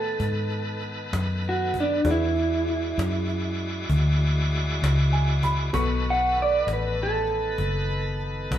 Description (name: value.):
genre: slow blues.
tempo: 65 BPM (dotted quarters).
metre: 12/8.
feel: straight.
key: unclear.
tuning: A4 = 440 Hz.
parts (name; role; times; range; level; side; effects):
electric guitar through a small old amp; melody; 0.0-8.6 s; D4 to F#5; -25 LUFS; right 2 dB; spring reverb.
warm upright piano; accompaniment; 0.0-8.6 s; B3 to C#6; -33 LUFS; left 1 dB; none.
bright tonewheel organ; sustained chords; 0.0-8.6 s; D#3 to D5; -32 LUFS; left 1 dB; slow rotary speaker, overdrive.
vintage muted fingered electric bass; bass; 0.0-8.6 s; F#1 to A2; -25 LUFS; left 1 dB; none.
cajon; drums; 0.2-8.6 s; none; -37 LUFS; left 1 dB; none.
room: moderate stone room reverb, RT60 1.2 s.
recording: band playing live in one room.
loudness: -22 LUFS.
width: side -11 dB against mid.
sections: 0.0-8.6 A section.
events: clean electric guitar solo 0.0-8.6; upright piano fill 4.8-5.7.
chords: 0.0 B9; 2.1 E9; 5.7 B9.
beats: 0.20 1.13 | 2.05 2.98 3.90 4.82 | 5.74 6.66 7.58 8.51.